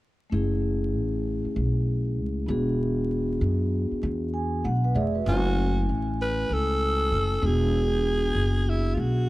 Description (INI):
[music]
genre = hip hop, jazz-hop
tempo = 97 BPM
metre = 4/4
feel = swing 64% on 16ths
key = F# minor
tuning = A4 = 436 Hz
[part]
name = vibraphone with soft mallets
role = accompaniment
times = 0.3-9.3 s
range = A3 to G#5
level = -28 LUFS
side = left 1 dB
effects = none
[part]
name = upright bass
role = bass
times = 0.3-9.3 s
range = E1 to F#2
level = -26 LUFS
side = equal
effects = none
[part]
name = growling alto saxophone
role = melody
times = 5.3-9.3 s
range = E4 to B4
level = -27 LUFS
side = right 1 dB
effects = none
[sound]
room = little or no reverb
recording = vinyl crackle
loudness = -23 LUFS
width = side -17 dB against mid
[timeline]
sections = 0.3-5.3 A section; 5.3-9.3 B section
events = vibraphone fill 4.0-5.3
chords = 0.3 F#m7; 2.5 E9; 5.3 F#m7; 7.4 E9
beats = | 0.31 0.93 1.55 2.17 | 2.79 3.41 4.03 4.64 | 5.26 5.88 6.50 7.12 | 7.74 8.36 8.97